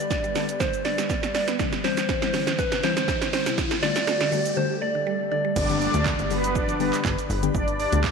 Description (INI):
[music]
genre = dance-pop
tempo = 121 BPM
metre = 4/4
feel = straight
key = G major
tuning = A4 = 443 Hz
[part]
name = soft struck synth lead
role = melody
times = 0.0-5.5 s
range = B4 to D5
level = -27 LUFS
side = equal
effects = chorus, tape echo
[part]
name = soft round pluck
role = accompaniment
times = 0.0-8.1 s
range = D3 to G4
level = -30 LUFS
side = left 13 dB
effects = chorus, sidechain pumping
[part]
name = ethereal airy pad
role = sustained chords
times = 0.0-8.1 s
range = D3 to B5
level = -34 LUFS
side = equal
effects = ensemble chorus, built-in reverb, sidechain pumping
[part]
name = riser and downlifter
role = sound effects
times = 0.0-8.1 s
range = none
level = -32 LUFS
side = left 1 dB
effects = none
[part]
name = mallet-like synth pluck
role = arpeggios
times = 0.1-5.5 s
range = C3 to D4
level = -34 LUFS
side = right 11 dB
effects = chorus, sidechain pumping, tape echo
[part]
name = punchy analog drum machine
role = drums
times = 0.1-8.1 s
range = crash cymbal, handclaps, hi-hat, kick drum, shaker, snare drum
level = -27 LUFS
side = right 4 dB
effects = none
[part]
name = filtered supersaw swell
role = melody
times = 5.6-8.0 s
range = B3 to D5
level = -26 LUFS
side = right 1 dB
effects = tape echo
[part]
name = plucky analog bass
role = bass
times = 5.6-8.1 s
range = G1 to D2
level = -27 LUFS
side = equal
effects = sidechain pumping
[sound]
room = moderate echo chamber reverb, RT60 1.8 s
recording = 1960s-style stereo with parts hard left and right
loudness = -22 LUFS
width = side -5 dB against mid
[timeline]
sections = 0.0-5.6 A section; 5.6-8.1 B section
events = build-up 0.0-5.6; drum fill 0.0-4.6; riser 0.0-5.6; drop 5.6-8.1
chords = 0.0 G; 1.6 Cadd9; 3.6 Dsus4; 5.6 G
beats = 0.11 0.60 1.10 | 1.60 2.09 2.59 3.08 | 3.58 4.08 4.57 5.07 | 5.56 6.06 6.55 7.05 | 7.55 8.04